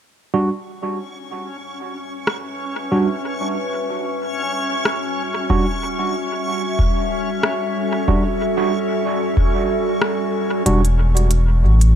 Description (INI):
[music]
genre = ambient dub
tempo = 93 BPM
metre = 4/4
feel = swing 57% on 16ths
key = E dorian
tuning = A4 = 440 Hz
[part]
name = warbly tape-like pad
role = sustained chords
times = 2.6-12.0 s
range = G3 to E5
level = -23 LUFS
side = equal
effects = chorus, built-in reverb
[part]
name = tine electric piano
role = stabs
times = 0.3-10.8 s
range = G3 to F#4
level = -24 LUFS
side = right 3 dB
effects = medium stereo tremolo, low-pass filter, dub echo
[part]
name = backwards swelling texture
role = texture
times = 1.0-10.7 s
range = C#4 to C#6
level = -26 LUFS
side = left 2 dB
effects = built-in reverb
[part]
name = organic electronic drum kit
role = drums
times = 2.3-11.9 s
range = hi-hat, rim click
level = -25 LUFS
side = equal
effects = overdrive, small room reverb, dub echo
[part]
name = electronic kick drum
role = drums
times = 5.5-10.8 s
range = none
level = -19 LUFS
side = equal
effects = small room reverb
[part]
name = warm sub bass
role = bass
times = 10.7-12.0 s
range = E1 to A1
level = -13 LUFS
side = equal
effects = none
[sound]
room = digital ambience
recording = none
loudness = -18 LUFS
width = side -9 dB against mid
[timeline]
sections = 0.3-10.7 A section; 10.7-12.0 B section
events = filter sweep on ambient pad 0.3-10.7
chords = 0.3 Emadd9